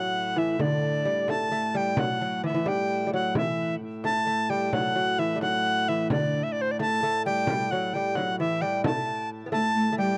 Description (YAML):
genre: medieval dance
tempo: 87 BPM (dotted quarters)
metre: 6/8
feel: straight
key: unclear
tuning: A4 = 440 Hz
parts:
  - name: bright reedy tenor recorder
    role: melody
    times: 0.0-10.2 s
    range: C5 to A5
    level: -29 LUFS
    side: equal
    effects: none
  - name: lute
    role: second line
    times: 0.0-10.2 s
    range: D3 to B3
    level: -32 LUFS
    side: equal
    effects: none
  - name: hand-pumped harmonium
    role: drone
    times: 0.0-10.2 s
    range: A2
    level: -36 LUFS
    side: equal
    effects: none
  - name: frame drum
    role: percussion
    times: 0.4-10.1 s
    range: none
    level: -34 LUFS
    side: equal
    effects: none
  - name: dark viola da gamba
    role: second line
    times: 9.5-10.2 s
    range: G3 to A3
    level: -28 LUFS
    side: equal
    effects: none
room: light reverb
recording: dry, close 1970s-style studio recording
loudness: -26 LUFS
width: mono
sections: 0.0-10.2 A section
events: none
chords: none